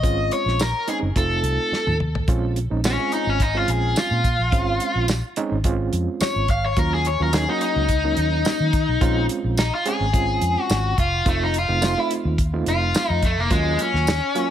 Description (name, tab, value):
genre	straight-eighth soul blues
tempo	107 BPM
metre	4/4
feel	swing 54% on 16ths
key	Bb minor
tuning	A4 = 439 Hz
part	overdriven electric guitar	melody	0.0-14.5 s	Ab3 to F5	-23 LUFS	left 3 dB	spring reverb
part	overdriven reed electric piano	accompaniment	0.0-14.5 s	Gb3 to Ab4	-27 LUFS	right 6 dB	fast tremolo
part	vintage muted fingered electric bass	bass	0.0-14.2 s	F1 to Eb3	-23 LUFS	equal	none
part	damped 70s drum kit	drums	0.0-14.5 s	hi-hat, kick drum, snare drum, tambourine, toms	-23 LUFS	equal	none
room	light reverb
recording	none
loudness	-19 LUFS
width	side -10 dB against mid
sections	0.0-2.3 A section; 2.3-14.5 B section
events	drum fill 1.7-2.3; overdriven electric guitar solo 2.3-14.5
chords	0.0 Bbm7; 1.2 F7; 2.3 Bbm7; 6.8 Ebm7; 9.0 Bbm7; 11.3 F7; 13.5 Ebm7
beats	| 0.03 0.59 1.16 1.72 | 2.28 2.84 3.40 3.96 | 4.53 5.09 5.65 6.21 | 6.77 7.33 7.89 8.45 | 9.02 9.58 10.14 10.70 | 11.26 11.82 12.38 12.95 | 13.51 14.07